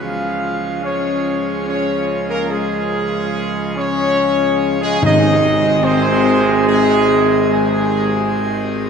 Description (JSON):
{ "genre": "classical", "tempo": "71 BPM", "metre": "3/4", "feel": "straight", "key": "Db major", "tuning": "A4 = 440 Hz", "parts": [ { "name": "dark trumpet section", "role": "melody", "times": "0.0-8.9 s", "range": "Ab4 to F5", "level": "-20 LUFS", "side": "equal", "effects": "none" }, { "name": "clear trombone section", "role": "sustained chords", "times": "0.0-8.9 s", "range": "C3 to Ab3", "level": "-23 LUFS", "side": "right 3 dB", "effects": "none" }, { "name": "dark French horn section", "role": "sustained chords", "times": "0.0-8.9 s", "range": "Ab3 to F4", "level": "-20 LUFS", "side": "left 4 dB", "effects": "none" }, { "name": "pipe organ, full organ", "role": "sustained chords", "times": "0.0-8.9 s", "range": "Eb3 to Ab4", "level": "-23 LUFS", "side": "left 1 dB", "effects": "none" }, { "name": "mellow tuba", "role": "bass", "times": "0.0-8.9 s", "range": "Ab1 to Db2", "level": "-21 LUFS", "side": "right 2 dB", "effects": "none" }, { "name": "timpani", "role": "percussion", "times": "5.0-6.2 s", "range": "Ab2", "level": "-23 LUFS", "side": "equal", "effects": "none" } ], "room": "wet cathedral reverb, RT60 4.2 s", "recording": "none", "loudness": "-14 LUFS", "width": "side -6 dB against mid", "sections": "0.0-8.9 A section", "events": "none", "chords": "0.0 Db; 5.0 Ab" }